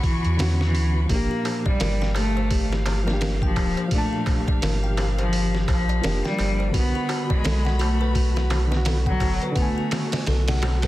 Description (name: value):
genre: trip hop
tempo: 85 BPM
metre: 4/4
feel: swing 59% on 16ths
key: unclear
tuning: A4 = 441 Hz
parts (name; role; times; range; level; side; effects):
- rich cello; melody; 0.0-10.9 s; E3 to B3; -27 LUFS; equal; tape echo
- reed electric piano; accompaniment; 0.0-10.9 s; Bb2 to A5; -30 LUFS; equal; overdrive, tremolo, tape echo
- dark symphonic string section; sustained chords; 0.0-10.9 s; F#4 to C#6; -35 LUFS; left 1 dB; none
- trip hop sampler-style drum kit; drums; 0.0-10.9 s; hi-hat, kick drum, snare drum; -26 LUFS; equal; none
- soft dub sub bass; bass; 0.3-10.9 s; D1 to E2; -23 LUFS; equal; tube saturation
- music box; arpeggios; 1.1-10.9 s; F#4 to G5; -32 LUFS; left 3 dB; tape echo
- darbuka; percussion; 1.1-10.9 s; none; -36 LUFS; right 1 dB; none
room: studio reverb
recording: dense, heavily limited modern master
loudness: -20 LUFS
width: side -16 dB against mid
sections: 0.0-10.9 A section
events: none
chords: 0.0 Bmadd9; 1.1 Gm7; 6.7 Bm